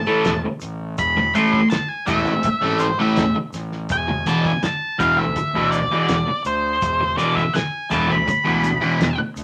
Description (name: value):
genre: psychedelic rock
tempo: 82 BPM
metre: 4/4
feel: straight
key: unclear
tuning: A4 = 438 Hz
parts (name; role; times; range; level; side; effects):
- octave-fuzz lead guitar; melody; 0.0-9.2 s; C5 to C6; -24 LUFS; equal; distortion
- fuzz fingered electric bass; bass; 0.0-9.4 s; E1 to D2; -31 LUFS; equal; overdrive
- fuzz guitar; riff; 0.1-9.2 s; E2 to A3; -22 LUFS; equal; distortion, phaser
- tube shaker; percussion; 0.1-9.4 s; none; -51 LUFS; equal; none
- cloth-damped thuddy drum kit; drums; 0.2-9.4 s; hi-hat, kick drum, snare drum; -28 LUFS; equal; none
room: moderate studio reverb, RT60 0.5 s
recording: none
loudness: -20 LUFS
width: mono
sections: 0.0-9.4 A section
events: lead electric guitar solo 0.0-9.4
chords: 0.0 A5/E; 3.9 E5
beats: 0.26 | 0.99 1.72 2.45 3.18 | 3.91 4.63 5.36 6.09 | 6.82 7.55 8.27 9.00